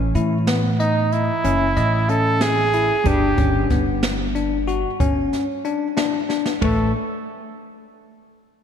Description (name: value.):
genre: progressive instrumental, band music in an uneven meter.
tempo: 185 BPM (eighths).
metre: 11/8.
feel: straight.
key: unclear.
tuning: A4 = 441 Hz.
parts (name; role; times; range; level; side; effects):
hollow-body jazz guitar; accompaniment; 0.0-6.9 s; E3 to C#5; -27 LUFS; right 1 dB; double-tracked left and right.
upright bass; bass; 0.0-6.9 s; F#1 to A2; -22 LUFS; right 1 dB; none.
bell-like tine electric piano; arpeggios; 0.2-6.9 s; A3 to D#5; -24 LUFS; left 5 dB; slapback echo.
jazz brush drum kit; drums; 0.2-6.8 s; hi-hat, kick drum, ride cymbal, snare drum; -24 LUFS; right 1 dB; none.
warm trumpet; melody; 0.8-6.9 s; D#4 to A4; -22 LUFS; right 2 dB; slapback echo.
room: moderate lush hall reverb, RT60 2.6 s.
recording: big arena sound.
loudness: -17 LUFS.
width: side -8 dB against mid.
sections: 0.0-6.6 A section; 6.6-8.6 B section.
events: drum fill 6.3-6.6.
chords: 0.0 Aadd9; 3.1 G; 6.6 Aadd9.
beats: 0.15 0.47 0.79 1.12 1.44 1.76 2.09 2.41 2.73 | 3.06 3.38 3.71 4.03 4.35 4.68 5.00 5.32 5.65 5.97 6.29 | 6.62.